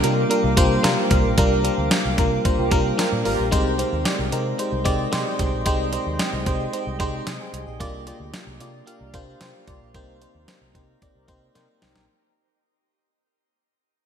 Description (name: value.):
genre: 1980s-style pop.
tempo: 112 BPM.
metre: 4/4.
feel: straight.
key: C minor.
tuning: A4 = 436 Hz.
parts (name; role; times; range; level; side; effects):
FM electric piano; accompaniment; 0.0-12.1 s; C3 to C6; -23 LUFS; left 1 dB; chorus, shimmer reverb.
granular cloud pad; sustained chords; 0.0-12.1 s; G4 to D6; -30 LUFS; right 1 dB; built-in reverb, shimmer reverb.
vintage muted fingered electric bass; bass; 0.0-12.1 s; Ab1 to C3; -27 LUFS; equal; none.
clean 12-bit digital drum machine; drums; 0.0-12.1 s; hi-hat, kick drum, snare drum, tambourine; -23 LUFS; equal; gated reverb.
mellow synth brass; stabs; 2.6-3.5, 11.2-12.1 s; Eb4 to Bb4; -30 LUFS; right 2 dB; chorus, phaser, ping-pong delay, shimmer reverb.
room: moderate lush hall reverb, RT60 1.7 s, digital ambience.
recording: bright 1980s-style digital production.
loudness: -19 LUFS.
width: side -8 dB against mid.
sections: 0.0-12.1 A section.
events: fade-out 0.0-12.1; band accent 1.4-3.5, 9.9-12.1; drum fill 11.6-12.1.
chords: 0.0 Gm7; 3.5 Abmaj7; 7.8 Bb6/C; 9.9 Cm7.